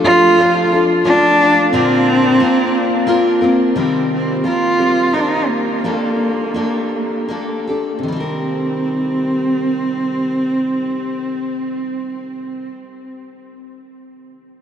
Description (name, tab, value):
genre	folk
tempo	77-89 BPM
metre	3/4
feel	straight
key	C dorian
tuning	A4 = 439 Hz
part	warm cello	melody	0.0-12.7 s	Bb3 to F4	-16 LUFS	equal	tape echo
part	picked steel-string acoustic guitar	accompaniment	0.0-12.9 s	Bb2 to Bb4	-18 LUFS	left 1 dB	none
room	wet huge ambient reverb, RT60 8.4 s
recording	dreamy mix soaked in reverb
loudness	-14 LUFS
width	side -8 dB against mid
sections	0.0-3.8 A section; 3.8-8.0 B section; 8.0-12.7 C section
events	slowing down 3.8-8.0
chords	0.0 Dm/F; 1.7 Bbadd9; 3.8 Cm7; 5.8 Gmadd9; 8.0 Cm7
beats	0.38 1.06 | 1.73 2.41 3.08 | 3.76 4.44 5.12 | 5.83 6.54 7.28 | 8.05 8.83 9.61 | 10.39 11.17 11.95